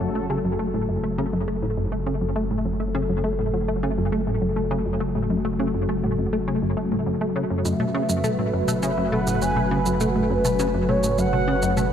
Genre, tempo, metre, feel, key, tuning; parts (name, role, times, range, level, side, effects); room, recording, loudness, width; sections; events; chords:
ambient, sequencer-driven space music; 102 BPM; 4/4; straight; F# minor; A4 = 440 Hz
sweeping resonant pad; sustained chords; 0.0-11.9 s; C#3 to B4; -25 LUFS; left 1 dB; chorus
plucky analog bass; riff; 0.0-11.9 s; F#2 to A3; -25 LUFS; equal; analog chorus, analog delay
round analog bass; bass; 0.0-11.9 s; F#1; -31 LUFS; equal
expressive portamento lead; melody; 7.6-11.9 s; B4 to G#5; -26 LUFS; equal; wide subtle chorus, analog delay
electronic shaker and toms; percussion; 7.7-11.9 s; -30 LUFS; left 1 dB
wet huge ambient reverb, RT60 7.5 s; -21 LUFS; side -9 dB against mid
0.0-11.9 A section
0.0 F#m